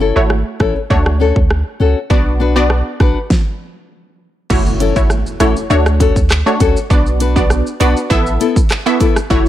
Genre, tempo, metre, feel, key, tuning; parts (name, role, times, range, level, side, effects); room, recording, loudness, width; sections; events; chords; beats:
dancehall; 100 BPM; 4/4; straight; F# minor; A4 = 442 Hz
analog pluck; accompaniment; 0.0-9.5 s; A3 to E5; -17 LUFS; right 1 dB; chorus, sidechain pumping
nylon-string guitar; arpeggios; 0.0-9.2 s; B3 to B4; -18 LUFS; left 7 dB
punchy sub bass; bass; 0.0-9.5 s; F#1 to D2; -15 LUFS; equal
pop drum kit; drums; 0.3-9.5 s; crash cymbal, handclaps, hi-hat, kick drum, rim click, shaker, snare drum; -15 LUFS; equal
woodblock and cabasa; percussion; 4.5-9.4 s; -30 LUFS; right 4 dB
impact; sound effects; 4.6-6.9 s; -26 LUFS; right 1 dB
warm velvety synth lead; second line; 9.3-9.5 s; E4; -15 LUFS; left 5 dB; chorus
little or no reverb; -11 LUFS; side -12 dB against mid
0.0-4.5 A section; 4.5-9.5 B section
stop 3.3-4.5; impact 4.5-6.9
0.0 F#m7; 0.9 Dmaj7; 2.1 Bm; 3.3 N.C.; 4.5 F#m7; 5.7 Dmaj7; 6.9 Bm; 8.1 Asus2
0.30 0.90 1.50 | 2.10 2.70 3.30 3.90 | 4.50 5.10 5.70 6.30 | 6.90 7.50 8.10 8.70 | 9.30